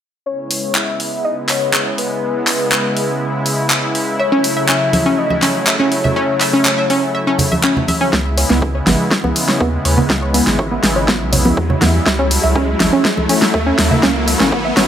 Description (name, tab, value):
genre	progressive house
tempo	122 BPM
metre	4/4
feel	straight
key	C# minor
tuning	A4 = 437 Hz
part	warm velvety synth lead	melody	0.3-7.8 s	B4 to E5	-20 LUFS	left 2 dB	chorus, tremolo, sidechain pumping, digital delay
part	supersaw pad	sustained chords	0.3-14.9 s	C#3 to E4	-20 LUFS	equal	sidechain pumping
part	deep house drum kit	drums	0.5-14.9 s	handclaps, hi-hat, snare drum	-17 LUFS	equal	none
part	analog pluck	arpeggios	4.2-14.9 s	B3 to E5	-18 LUFS	equal	chorus, sidechain pumping, digital delay
part	congas	percussion	4.9-14.0 s	none	-20 LUFS	right 2 dB	sidechain pumping on perc
part	saturated sub bass	bass	8.1-14.9 s	G#1 to E2	-19 LUFS	equal	sidechain pumping
part	electronic kick drum	drums	8.1-14.6 s	none	-23 LUFS	equal	high-pass filter on kick
part	riser	sound effects	9.8-14.9 s	none	-23 LUFS	equal	none
room	moderate digital room reverb, RT60 1.2 s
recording	none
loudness	-13 LUFS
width	side -9 dB against mid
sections	0.3-8.1 A section; 8.1-14.9 B section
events	build-up 8.1-14.9; drum fill 8.1-14.9; riser 9.8-14.9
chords	0.3 C#m7; 4.2 F#m7/C#; 8.1 C#m7; 12.1 F#m7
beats	| 0.26 0.75 1.25 1.74 | 2.23 2.72 3.21 3.70 | 4.20 4.69 5.18 5.67 | 6.16 6.66 7.15 7.64 | 8.13 8.62 9.11 9.61 | 10.10 10.59 11.08 11.57 | 12.06 12.56 13.05 13.54 | 14.03 14.52